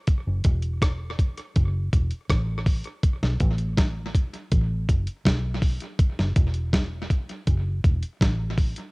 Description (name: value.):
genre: roots reggae.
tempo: 81 BPM.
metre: 4/4.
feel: straight.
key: unclear.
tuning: A4 = 440 Hz.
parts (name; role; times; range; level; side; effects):
dusty soul sampler-style drum kit; drums; 0.1-8.9 s; hi-hat, kick drum, rim click, snare drum; -22 LUFS; equal; cassette tape, tape echo.
fingered electric bass; bass; 0.3-8.7 s; E1 to B1; -26 LUFS; equal; none.
room: little or no reverb.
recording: home recording on cassette.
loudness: -22 LUFS.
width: side -28 dB against mid.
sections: 0.0-8.9 A section.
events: none.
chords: none.